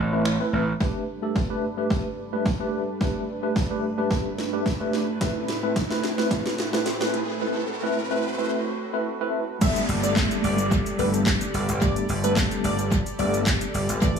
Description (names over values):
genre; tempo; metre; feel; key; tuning
dance-pop; 109 BPM; 4/4; straight; unclear; A4 = 440 Hz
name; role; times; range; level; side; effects
gritty slap bass; bass; 0.0-0.7, 9.9-14.2 s; G1 to A1; -25 LUFS; right 1 dB; overdrive, sidechain pumping
barky tine electric piano; accompaniment; 0.1-14.2 s; E3 to B4; -27 LUFS; equal; medium stereo tremolo, sidechain pumping
house drum kit; drums; 0.3-14.2 s; crash cymbal, finger snaps, handclaps, hi-hat, kick drum, shaker, snare drum; -26 LUFS; equal; overdrive, tape echo
chorused pulse-width pad; sustained chords; 0.8-14.2 s; G2 to E5; -32 LUFS; right 1 dB; sidechain pumping
riser and downlifter; sound effects; 2.3-14.0 s; none; -34 LUFS; right 1 dB; none
plucky unison lead; melody; 9.6-14.2 s; B4 to E5; -30 LUFS; left 2 dB; phaser, sidechain pumping, tape echo
room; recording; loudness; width
light reverb; echo-heavy mix, high-pass filter; -22 LUFS; side -6 dB against mid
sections
0.8-9.6 A section; 9.6-14.2 B section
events
break 0.0-0.8; build-up 0.8-9.6; drum fill 0.8-7.4; filter sweep 0.8-9.6; riser 2.3-9.6; drop 9.6-14.2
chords
0.0 Amadd9; 0.8 Gadd9; 5.2 Amadd9; 9.6 Gadd9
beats
0.26 | 0.81 1.36 1.91 2.46 | 3.01 3.56 4.11 4.66 | 5.21 5.76 6.31 6.86 | 7.41 7.96 8.51 9.06 | 9.61 10.16 10.71 11.27 | 11.82 12.37 12.92 13.47 | 14.02